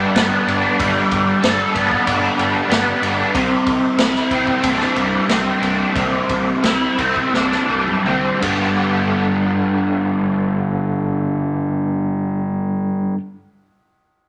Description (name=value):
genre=psychedelic rock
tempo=79-94 BPM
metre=4/4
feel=straight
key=G major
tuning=A4 = 435 Hz
part: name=musette accordion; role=sustained chords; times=0.0-3.3 s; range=D5 to B5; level=-31 LUFS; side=equal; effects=none
part: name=crunchy overdriven guitar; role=riff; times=0.0-13.2 s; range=G2 to A4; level=-19 LUFS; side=equal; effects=rotary speaker
part: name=fuzz fingered electric bass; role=bass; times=0.0-13.1 s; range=G1 to C2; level=-28 LUFS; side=equal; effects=overdrive
part: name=vintage drum kit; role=drums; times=0.2-8.6 s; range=kick drum, ride cymbal, snare drum, toms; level=-25 LUFS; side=equal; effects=none
room=wet studio reverb, RT60 0.9 s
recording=none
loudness=-18 LUFS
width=mono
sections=0.0-8.8 A section; 8.8-11.8 B section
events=slowing down 3.3-8.8; drum fill 7.3-8.8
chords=0.0 Gadd9; 3.3 Cadd9; 8.4 G